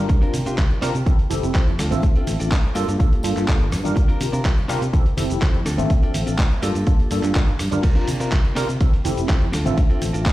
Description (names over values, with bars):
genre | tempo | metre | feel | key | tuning
filtered disco house | 124 BPM | 4/4 | straight | C mixolydian | A4 = 439 Hz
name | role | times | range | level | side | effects
tine electric piano | accompaniment | 0.0-10.3 s | Bb3 to E5 | -26 LUFS | equal | medium stereo tremolo, phaser, sidechain pumping
overdriven fingered electric bass | bass | 0.0-10.3 s | F1 to C3 | -24 LUFS | equal | sidechain pumping
direct-recorded clean electric guitar | riff | 0.1-10.3 s | Bb3 to C5 | -30 LUFS | equal | sidechain pumping
dusty soul sampler-style drum kit | drums | 0.1-10.3 s | crash cymbal, handclaps, hi-hat, ride cymbal, rim click, shaker | -29 LUFS | equal | sidechain pumping on hats, studio reverb, sidechain pumping on perc, sidechain pumping on cymbals
electronic kick drum | drums | 0.1-10.3 s | none | -18 LUFS | equal | studio reverb
tambourine and congas | percussion | 0.1-10.3 s | none | -32 LUFS | right 2 dB | none
room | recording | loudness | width
little or no reverb | played on a big sound system in a bare room, stone room reverb | -17 LUFS | side -16 dB against mid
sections
0.0-10.3 A section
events
none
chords
0.1 C9sus4; 1.1 Fmaj7; 1.8 Dm7; 2.8 Gm9; 4.0 C9sus4; 4.9 Fmaj7; 5.7 Dm7; 6.6 Gm9; 7.8 C9sus4; 8.8 Fmaj7; 9.5 Dm7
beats
| 0.10 0.58 1.06 1.55 | 2.03 2.52 3.00 3.48 | 3.97 4.45 4.93 5.42 | 5.90 6.39 6.87 7.35 | 7.84 8.32 8.81 9.29 | 9.77 10.26